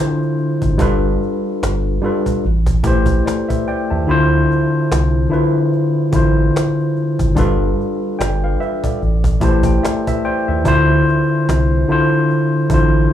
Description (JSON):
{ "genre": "lo-fi hip hop", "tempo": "73 BPM", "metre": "4/4", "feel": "swing 56% on 16ths", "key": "unclear", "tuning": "A4 = 443 Hz", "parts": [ { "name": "tine electric piano", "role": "accompaniment", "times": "0.0-13.1 s", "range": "D3 to A5", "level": "-16 LUFS", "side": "left 1 dB", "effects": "medium stereo tremolo, low-pass filter, plate reverb" }, { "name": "cajon", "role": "drums", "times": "0.2-12.9 s", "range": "none", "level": "-20 LUFS", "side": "equal", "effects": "none" }, { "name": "round analog bass", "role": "bass", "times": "0.6-13.1 s", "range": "G1 to D#2", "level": "-16 LUFS", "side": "equal", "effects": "none" } ], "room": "light reverb", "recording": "dry, gritty hardware recording, studio reverb", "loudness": "-14 LUFS", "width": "side -10 dB against mid", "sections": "0.0-13.1 A section", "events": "kick muted 4.1-5.7", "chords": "0.0 Dm9; 0.8 G9; 2.4 Am9; 4.1 Dm9; 7.4 G9; 9.0 Am9; 10.7 Dm9" }